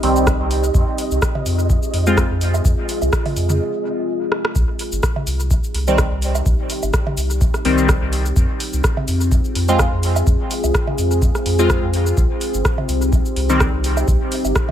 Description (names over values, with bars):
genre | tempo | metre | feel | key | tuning
dub techno | 126 BPM | 4/4 | swing 54% on 16ths | C minor | A4 = 440 Hz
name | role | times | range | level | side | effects
deep dark ambient pad | sustained chords | 0.0-14.7 s | C4 to Ab4 | -24 LUFS | left 1 dB | chorus, built-in reverb, sidechain pumping
resonant sweep polysynth | stabs | 0.0-2.2, 5.9-13.6 s | Eb3 to F4 | -22 LUFS | left 1 dB | chorus, phaser, sidechain pumping, dub echo
warm sub bass | bass | 0.0-14.5 s | G1 to F2 | -20 LUFS | equal | sidechain pumping
deep house drum kit | drums | 0.0-14.7 s | cabasa, hi-hat, rim click | -25 LUFS | equal | studio reverb, dub echo
flickering grainy texture | texture | 0.0-3.6 s | Eb5 | -31 LUFS | right 1 dB | built-in reverb, sidechain pumping
electronic kick drum | drums | 0.3-14.7 s | none | -19 LUFS | equal | studio reverb
electronic toms and woodblock | percussion | 1.4-14.7 s | none | -28 LUFS | right 4 dB | sidechain pumping on toms, studio reverb, sidechain pumping on perc, dub echo
room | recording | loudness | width
digital ambience | none | -16 LUFS | side -10 dB against mid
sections
0.0-4.6 A section; 4.6-14.7 A section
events
break 3.6-4.6; drum fill 4.3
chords
0.0 Cm; 0.7 Fm; 4.6 Cm; 8.4 Fm; 12.2 Cm